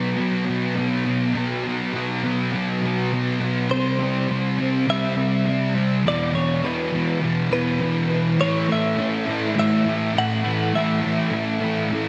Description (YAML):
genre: rock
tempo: 102 BPM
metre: 4/4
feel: straight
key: unclear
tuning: A4 = 441 Hz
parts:
  - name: fuzz guitar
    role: riff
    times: 0.0-12.1 s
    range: E2 to C4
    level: -23 LUFS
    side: equal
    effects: distortion, analog chorus
  - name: direct-recorded clean electric guitar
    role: melody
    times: 3.7-11.9 s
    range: B4 to F#5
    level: -29 LUFS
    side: equal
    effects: analog chorus, diffuse ambient delay
room: wet plate reverb, RT60 2.9 s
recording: dreamy mix soaked in reverb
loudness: -22 LUFS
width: mono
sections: 0.0-8.4 A section; 8.4-12.1 B section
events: none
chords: 0.0 B5; 3.7 C; 6.1 E5; 8.4 A5